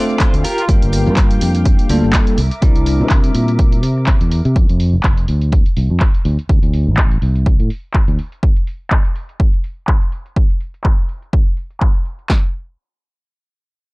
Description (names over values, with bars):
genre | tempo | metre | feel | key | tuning
filtered disco house | 124 BPM | 4/4 | swing 56% on 16ths | unclear | A4 = 440 Hz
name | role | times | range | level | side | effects
bell-like tine electric piano | accompaniment | 0.0-3.8 s | G3 to Bb4 | -19 LUFS | left 1 dB | medium stereo tremolo, phaser, vintage 12-bit sampler grit, sidechain pumping, low-pass filter
dark studio string section | sustained chords | 0.0-4.5 s | G4 to D6 | -29 LUFS | equal | sidechain pumping, low-pass filter
direct-recorded clean electric guitar | riff | 0.0-0.6 s | D4 to C5 | -21 LUFS | right 1 dB | tremolo, sidechain pumping, low-pass filter
maracas | percussion | 0.1-4.5 s | none | -38 LUFS | left 5 dB | none
punchy analog drum machine | drums | 0.2-12.4 s | handclaps, kick drum, snare drum | -14 LUFS | equal | none
punchy analog drum machine | drums | 0.2-12.3 s | handclaps, hi-hat | -23 LUFS | equal | sidechain pumping on hats, low-pass filter on hats, low-pass filter on snare
fingered electric bass | bass | 0.3-8.2 s | F1 to C3 | -16 LUFS | equal | sidechain pumping, low-pass filter
mellow trumpet section | melody | 0.6-0.7 s | F4 | -27 LUFS | right 1 dB | none
room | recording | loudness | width
little or no reverb | dry, gritty hardware recording, cassette tape | -13 LUFS | side -25 dB against mid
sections
0.0-12.3 A section; 12.3-13.9 B section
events
filter sweep on drum 0.0-12.3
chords
0.4 Gm7; 2.4 C9; 4.6 F5; 6.3 D5; 8.2 N.C.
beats
0.20 | 0.69 1.17 1.65 2.14 | 2.62 3.11 3.59 4.07 | 4.56 5.04 5.53 6.01 | 6.49 6.98 7.46 7.94 | 8.43 8.91 9.40 9.88 | 10.36 10.85 11.33 11.81 | 12.30